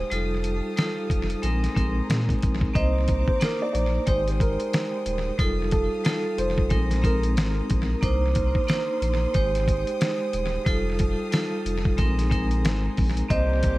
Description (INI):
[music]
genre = hip hop, boom-bap hip-hop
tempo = 91 BPM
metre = 4/4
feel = swing 60% on 16ths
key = unclear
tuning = A4 = 438 Hz
[part]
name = vibraphone with hard mallets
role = accompaniment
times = 0.0-13.8 s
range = G3 to Eb5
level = -27 LUFS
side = right 1 dB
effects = cassette tape, tape echo
[part]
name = bright studio string section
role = sustained chords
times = 0.0-13.8 s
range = Ab3 to Eb6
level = -39 LUFS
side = left 1 dB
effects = none
[part]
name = saturated sub bass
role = bass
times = 0.0-13.8 s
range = Eb1 to Bb2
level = -26 LUFS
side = equal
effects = none
[part]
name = dusty soul sampler-style drum kit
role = drums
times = 0.1-13.8 s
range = hi-hat, kick drum, snare drum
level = -26 LUFS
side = equal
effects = tape echo
[part]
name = dark upright piano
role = melody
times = 2.8-7.2, 13.3-13.8 s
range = A4 to Eb5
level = -31 LUFS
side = equal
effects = tape echo
[part]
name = warm horn section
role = stabs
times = 13.3-13.8 s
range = D3 to G4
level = -33 LUFS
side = left 2 dB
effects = none
[sound]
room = light reverb, small room ambience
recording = echo-heavy mix, vinyl crackle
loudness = -22 LUFS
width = side -18 dB against mid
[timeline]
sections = 0.0-2.8 A section; 2.8-13.8 B section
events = none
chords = 0.1 F9; 1.4 Bb9sus4; 2.8 Cm9; 4.1 Abmaj7; 5.4 F9; 6.7 Bb9sus4; 8.0 Cm9; 9.3 Abmaj7; 10.7 F9; 12.0 Bb9sus4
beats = | 0.11 0.77 1.43 2.09 | 2.75 3.41 4.07 4.73 | 5.39 6.05 6.71 7.37 | 8.03 8.69 9.35 10.00 | 10.66 11.32 11.98 12.64 | 13.30